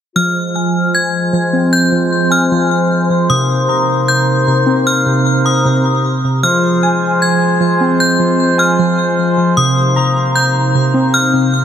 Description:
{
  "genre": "hip hop",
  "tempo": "153 BPM",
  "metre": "4/4",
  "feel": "half-time",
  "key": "F minor",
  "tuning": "A4 = 440 Hz",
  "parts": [
    { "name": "metallic FM bell", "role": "second line", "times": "0.2-11.6 s", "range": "Eb6 to Ab6", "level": "-16 LUFS", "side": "left 2 dB", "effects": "chorus, tremolo, ping-pong delay" },
    { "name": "dark woodwind section", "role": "sustained chords", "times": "0.2-11.6 s", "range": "Ab3 to C5", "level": "-18 LUFS", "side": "left 1 dB", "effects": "low-pass filter" },
    { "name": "warbly lo-fi synth keys", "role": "arpeggios", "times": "0.2-11.6 s", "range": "C3 to Bb5", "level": "-14 LUFS", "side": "right 1 dB", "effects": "chorus, low-pass filter, ping-pong delay" }
  ],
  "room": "moderate huge ambient reverb, RT60 6.6 s",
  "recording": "none",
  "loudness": "-11 LUFS",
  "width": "side -9 dB against mid",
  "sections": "0.2-11.6 A section",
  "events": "filter sweep 0.2-11.6",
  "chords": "0.2 Fm; 3.3 Cm7; 6.4 Fm; 9.6 Cm7",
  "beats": "| 0.16 0.55 0.94 1.34 | 1.73 2.12 2.51 2.90 | 3.30 3.69 4.08 4.47 | 4.87 5.26 5.65 6.04 | 6.43 6.83 7.22 7.61 | 8.00 8.39 8.79 9.18 | 9.57 9.96 10.36 10.75 | 11.14 11.53"
}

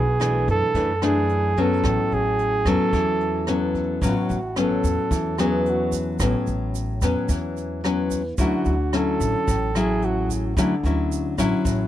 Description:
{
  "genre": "bossa nova",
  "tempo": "110 BPM",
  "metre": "4/4",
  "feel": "straight",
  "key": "A major",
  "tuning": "A4 = 440 Hz",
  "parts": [
    { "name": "breathy flugelhorn", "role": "melody", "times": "0.0-10.3 s", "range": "F#4 to A4", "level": "-25 LUFS", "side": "right 3 dB", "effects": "tape echo" },
    { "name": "nylon-string guitar", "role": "accompaniment", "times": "0.0-11.9 s", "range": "F#2 to E4", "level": "-23 LUFS", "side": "left 3 dB", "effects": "none" },
    { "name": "upright bass", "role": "bass", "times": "0.0-11.9 s", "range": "A1 to F#2", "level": "-26 LUFS", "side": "equal", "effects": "none" },
    { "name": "jazz brush drum kit", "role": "drums", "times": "0.2-11.8 s", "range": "hi-hat, kick drum, rim click", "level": "-27 LUFS", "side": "equal", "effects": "none" },
    { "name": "egg shaker", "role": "percussion", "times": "4.0-11.9 s", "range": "none", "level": "-38 LUFS", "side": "right 20 dB", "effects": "none" }
  ],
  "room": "small room ambience",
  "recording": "dry, close 1970s-style studio recording",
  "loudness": "-20 LUFS",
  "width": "side -12 dB against mid",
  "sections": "0.0-4.0 A section; 4.0-11.9 B section",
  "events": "flugelhorn solo 4.0-11.9",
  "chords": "0.0 Bm11; 1.8 A69; 8.4 Dmaj9",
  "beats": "0.21 0.75 1.30 | 1.84 2.39 2.94 3.48 | 4.03 4.57 5.12 5.66 | 6.21 6.75 7.30 7.84 | 8.39 8.93 9.48 10.02 | 10.57 11.11 11.66"
}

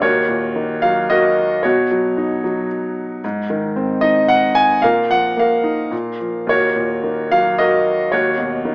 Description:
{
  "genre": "classical, lyrical solo piano",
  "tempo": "112 BPM",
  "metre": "3/4",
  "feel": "rubato",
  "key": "Eb minor",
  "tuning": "A4 = 440 Hz",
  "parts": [
    { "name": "clear grand piano", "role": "solo", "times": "0.0-8.7 s", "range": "Eb2 to Ab5", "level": "-14 LUFS", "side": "equal", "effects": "none" }
  ],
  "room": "moderate recital hall reverb, RT60 1.3 s",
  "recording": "small speaker sound",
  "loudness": "-14 LUFS",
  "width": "side -29 dB against mid",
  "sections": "0.0-8.7 A section",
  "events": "none",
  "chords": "0.0 Ebm7; 1.6 Badd9; 3.2 Ab; 4.8 Bbsus4; 5.9 Bb5; 6.5 Ebm7; 8.1 Badd9/D#",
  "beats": "| 0.02 0.57 1.11 | 1.65 2.18 2.70 | 3.23 3.76 4.30 | 4.83 5.37 5.92 | 6.48 7.03 7.59 | 8.12 8.65"
}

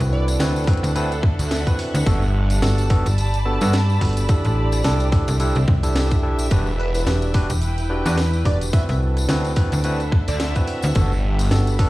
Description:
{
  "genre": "glitch hop",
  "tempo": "108 BPM",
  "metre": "4/4",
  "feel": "swing 57% on 16ths",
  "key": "unclear",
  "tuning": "A4 = 440 Hz",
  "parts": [
    { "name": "overdriven tine electric piano", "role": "stabs", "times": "0.0-11.9 s", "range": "B3 to B4", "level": "-26 LUFS", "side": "right 1 dB", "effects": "sidechain pumping, dub echo" },
    { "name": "slap-like FM bass", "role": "bass", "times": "0.0-11.9 s", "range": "E1 to G2", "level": "-20 LUFS", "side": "equal", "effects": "none" },
    { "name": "drum and bass drum kit", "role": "drums", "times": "0.0-11.9 s", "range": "hi-hat, rim click, snare drum", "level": "-28 LUFS", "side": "equal", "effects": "overdrive, small room ambience" },
    { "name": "tambourine", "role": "percussion", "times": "0.0-11.8 s", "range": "none", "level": "-35 LUFS", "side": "left 3 dB", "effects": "none" },
    { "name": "dark studio string section", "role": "texture", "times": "0.0-11.9 s", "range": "C4 to B5", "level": "-29 LUFS", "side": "right 1 dB", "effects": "sidechain pumping" },
    { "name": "plucky unison lead", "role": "melody", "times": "0.1-0.6, 6.8-10.5 s", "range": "B4 to E5", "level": "-32 LUFS", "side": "right 3 dB", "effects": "analog chorus, dub echo" },
    { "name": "electronic kick drum", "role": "drums", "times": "0.7-11.9 s", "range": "none", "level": "-18 LUFS", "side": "equal", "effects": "overdrive, small room ambience" },
    { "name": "phased detuned saw bass", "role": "bass", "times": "1.4-2.6, 6.5-11.5 s", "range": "E1 to D2", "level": "-21 LUFS", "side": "equal", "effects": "phaser" }
  ],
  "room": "light reverb",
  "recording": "played on a big sound system in a bare room, stone room reverb, vinyl crackle",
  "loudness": "-17 LUFS",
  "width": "side -18 dB against mid",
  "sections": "0.0-11.9 A section",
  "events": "none",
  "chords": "0.0 D13; 2.1 Gmaj9; 4.3 C69; 6.5 Em7; 8.7 D13; 11.0 Gmaj9",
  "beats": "0.40 0.96 1.51 | 2.07 2.62 3.18 3.73 | 4.29 4.84 5.40 5.96 | 6.51 7.07 7.62 8.18 | 8.73 9.29 9.85 10.40 | 10.96 11.51"
}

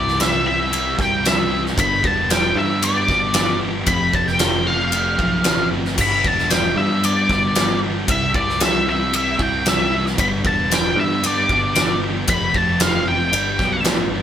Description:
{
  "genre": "classic rock",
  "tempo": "114 BPM",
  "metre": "4/4",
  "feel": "straight",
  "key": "G mixolydian",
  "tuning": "A4 = 441 Hz",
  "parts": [
    { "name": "octave-fuzz lead guitar", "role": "melody", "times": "0.0-13.8 s", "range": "D5 to B5", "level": "-20 LUFS", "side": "left 1 dB", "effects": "wah, distortion" },
    { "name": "sludgy distorted guitar", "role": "riff", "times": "0.0-14.2 s", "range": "F2 to E4", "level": "-23 LUFS", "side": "equal", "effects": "overdrive" },
    { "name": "picked electric bass", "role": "bass", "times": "0.0-14.2 s", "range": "E1 to G2", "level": "-26 LUFS", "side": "right 1 dB", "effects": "none" },
    { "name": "huge arena drum kit", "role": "drums", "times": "0.1-14.0 s", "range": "crash cymbal, kick drum, ride cymbal, snare drum", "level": "-20 LUFS", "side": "equal", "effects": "none" }
  ],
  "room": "light reverb",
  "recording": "band playing live in one room",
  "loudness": "-16 LUFS",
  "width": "side -9 dB against mid",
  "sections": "0.0-14.2 A section",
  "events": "none",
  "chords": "0.0 C; 1.8 G; 3.9 F; 6.0 G; 8.1 C; 10.2 G; 12.3 F; 13.3 G",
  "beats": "0.19 0.72 1.25 | 1.77 2.30 2.82 3.35 | 3.88 4.40 4.93 5.45 | 5.98 6.50 7.03 7.55 | 8.08 8.60 9.13 9.65 | 10.18 10.71 11.23 11.76 | 12.28 12.80 13.33 13.86"
}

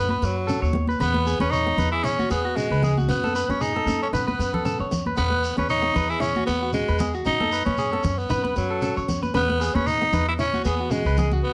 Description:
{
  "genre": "highlife guitar band",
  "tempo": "115 BPM",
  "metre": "4/4",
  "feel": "swing 54% on 16ths",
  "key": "E major",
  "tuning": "A4 = 440 Hz",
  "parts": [
    { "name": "growling tenor saxophone", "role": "melody", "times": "0.0-11.5 s", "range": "F#3 to E4", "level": "-27 LUFS", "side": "equal", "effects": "slapback echo" },
    { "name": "flamenco guitar", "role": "accompaniment", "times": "0.0-11.4 s", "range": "B3 to E4", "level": "-34 LUFS", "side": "equal", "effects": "none" },
    { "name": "clean electric guitar", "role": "arpeggios", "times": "0.0-11.5 s", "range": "F#4 to C#5", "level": "-31 LUFS", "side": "equal", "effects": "slapback echo" },
    { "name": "upright bass", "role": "bass", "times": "0.0-11.4 s", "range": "C#2 to F#2", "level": "-29 LUFS", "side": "equal", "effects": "none" },
    { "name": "congas", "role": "percussion", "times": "0.1-11.4 s", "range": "none", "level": "-32 LUFS", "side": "equal", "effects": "none" },
    { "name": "shekere", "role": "percussion", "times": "0.1-11.4 s", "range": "none", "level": "-36 LUFS", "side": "equal", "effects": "none" }
  ],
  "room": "light reverb",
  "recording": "nothing above 10.7 kHz",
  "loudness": "-23 LUFS",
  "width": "mono",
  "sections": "0.0-11.5 A section",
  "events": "none",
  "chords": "0.0 B7/F#; 1.0 Eadd9; 3.1 F#m; 4.1 B7/F#; 5.2 Eadd9; 7.3 F#m; 8.3 B7/F#; 9.3 Eadd9",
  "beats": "0.48 | 1.00 1.52 2.04 2.56 | 3.09 3.61 4.13 4.65 | 5.17 5.69 6.22 6.74 | 7.26 7.78 8.30 8.82 | 9.35 9.87 10.39 10.91 | 11.43"
}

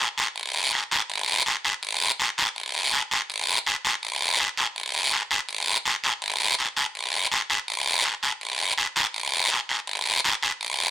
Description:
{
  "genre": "latin",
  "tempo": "164 BPM",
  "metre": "4/4",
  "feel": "straight",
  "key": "none",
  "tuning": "none",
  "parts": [
    { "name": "guiro", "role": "percussion", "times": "0.2-10.9 s", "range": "none", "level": "-22 LUFS", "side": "equal", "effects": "none" }
  ],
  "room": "light reverb",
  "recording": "close, detailed microphones",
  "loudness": "-22 LUFS",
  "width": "side -13 dB against mid",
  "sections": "0.0-1.8 A section; 1.8-10.9 B section",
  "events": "none",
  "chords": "none",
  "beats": "| 0.36 0.72 1.09 1.46 | 1.82 2.19 2.56 2.92 | 3.29 3.66 4.02 4.39 | 4.75 5.12 5.49 5.85 | 6.22 6.58 6.95 7.32 | 7.68 8.05 8.41 8.78 | 9.14 9.51 9.88 10.24 | 10.61"
}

